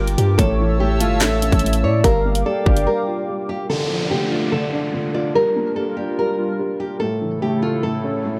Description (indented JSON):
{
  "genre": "hip hop, drill",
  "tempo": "145 BPM",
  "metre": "4/4",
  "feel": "half-time",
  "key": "D harmonic minor",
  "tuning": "A4 = 440 Hz",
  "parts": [
    { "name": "nylon-string guitar", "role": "melody", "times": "0.0-8.4 s", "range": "F4 to D5", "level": "-26 LUFS", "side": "equal", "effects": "low-pass filter, delay" },
    { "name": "dark baby grand piano", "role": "accompaniment", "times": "0.0-8.4 s", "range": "A2 to G4", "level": "-26 LUFS", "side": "equal", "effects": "low-pass filter" },
    { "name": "hollow soft pad", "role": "sustained chords", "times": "0.0-8.4 s", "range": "C#3 to E6", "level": "-29 LUFS", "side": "equal", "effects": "chorus" },
    { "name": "long sustained 808-style bass", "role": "bass", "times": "0.0-2.9 s", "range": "G1 to A2", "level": "-22 LUFS", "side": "equal", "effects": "none" },
    { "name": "drill drum kit", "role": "drums", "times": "0.1-2.9 s", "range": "handclaps, hi-hat, kick drum, snare drum", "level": "-21 LUFS", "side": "equal", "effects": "none" },
    { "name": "warm velvety synth lead", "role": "second line", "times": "0.4-3.2 s", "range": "C#5 to F5", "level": "-28 LUFS", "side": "equal", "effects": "chorus, delay" },
    { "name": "downlifter and riser", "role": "sound effects", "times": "3.7-8.4 s", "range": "none", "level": "-33 LUFS", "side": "equal", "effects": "none" }
  ],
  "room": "digital ambience",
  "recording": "none",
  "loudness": "-19 LUFS",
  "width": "mono",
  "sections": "0.0-3.7 A section; 3.7-8.4 B section",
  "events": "break 2.9-3.7",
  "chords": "0.4 A; 2.0 Gm7; 3.7 Dm; 5.4 Gm7; 7.0 A"
}